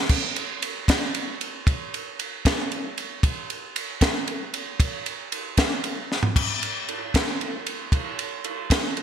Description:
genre	rock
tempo	77 BPM (dotted quarters)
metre	6/8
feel	straight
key	none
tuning	none
part	compact cocktail drum kit	drums	0.1-9.0 s	crash cymbal, kick drum, ride cymbal, snare drum, toms	-23 LUFS	equal	gated reverb
room	moderate lush hall reverb, RT60 1.8 s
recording	bright 1980s-style digital production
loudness	-23 LUFS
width	side -9 dB against mid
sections	0.0-6.4 A section; 6.4-9.0 B section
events	drum fill 6.1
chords	none

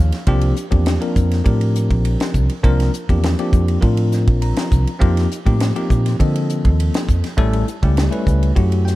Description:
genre	electric jazz fusion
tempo	101 BPM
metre	4/4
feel	straight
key	unclear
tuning	A4 = 439 Hz
part	bell-like tine electric piano	accompaniment	0.0-9.0 s	F3 to Bb5	-21 LUFS	left 2 dB	fast stereo tremolo
part	vintage muted fingered electric bass	bass	0.0-9.0 s	A1 to D3	-17 LUFS	equal	none
part	tight funk drum kit	drums	0.1-9.0 s	hi-hat, kick drum, ride cymbal, snare drum	-20 LUFS	equal	none
room	little or no reverb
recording	dark, warm production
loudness	-14 LUFS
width	side -17 dB against mid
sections	0.0-9.0 A section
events	tine electric piano fill 0.0, 4.1-5.0, 8.6-9.0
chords	0.3 C9sus4; 5.0 F9sus4; 7.4 A7

